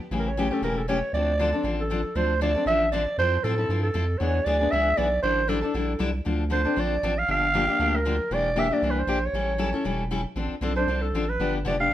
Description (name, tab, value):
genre	acoustic string swing (jazz manouche)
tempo	234 BPM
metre	4/4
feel	swing 55% on 8ths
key	D minor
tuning	A4 = 440 Hz
part	picked steel-string acoustic guitar	accompaniment	0.1-11.9 s	C#3 to A4	-28 LUFS	left 4 dB	none
part	saturated sub bass	bass	0.1-11.9 s	E1 to A2	-28 LUFS	equal	none
part	growling clarinet	melody	0.2-11.9 s	A4 to F5	-25 LUFS	right 2 dB	plate reverb
room	moderate studio reverb, RT60 0.7 s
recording	none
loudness	-22 LUFS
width	side -12 dB against mid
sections	0.0-2.1 A section; 2.1-10.4 B section; 10.4-11.9 C section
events	clarinet solo 10.4-11.9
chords	0.1 A7; 1.1 Dm7; 3.2 Fmaj7; 4.2 E7; 5.2 A7sus4; 6.2 Dm7; 7.3 Gm7; 8.3 Em7b5; 9.3 A7; 10.4 Dm7; 11.4 G7